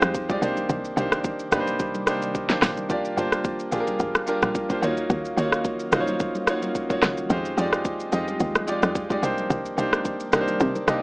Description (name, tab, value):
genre	amapiano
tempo	109 BPM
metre	4/4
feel	swing 55% on 16ths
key	unclear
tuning	A4 = 440 Hz
part	clear concert grand piano	accompaniment	0.0-11.0 s	Ab3 to Eb5	-25 LUFS	equal	none
part	glassy FM pad	sustained chords	0.0-11.0 s	C3 to F5	-34 LUFS	equal	ensemble chorus, built-in reverb, sidechain pumping
part	woody log drum bass	bass	0.0-11.0 s	G1 to C3	-27 LUFS	equal	none
part	deep house drum kit	drums	0.0-11.0 s	hi-hat, kick drum, rim click, shaker, snare drum	-24 LUFS	equal	none
part	congas	percussion	0.0-10.9 s	none	-38 LUFS	equal	none
room	light reverb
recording	rough home demo mix, AM radio sound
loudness	-22 LUFS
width	side -28 dB against mid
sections	0.0-11.0 A section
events	none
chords	0.4 Cm7; 2.9 Gm7; 4.8 Ebm7; 7.3 Fm7; 9.2 Cm7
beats	0.14 | 0.70 1.25 1.80 2.35 | 2.90 3.45 4.00 4.55 | 5.10 5.65 6.20 6.75 | 7.30 7.85 8.40 8.95 | 9.50 10.05 10.60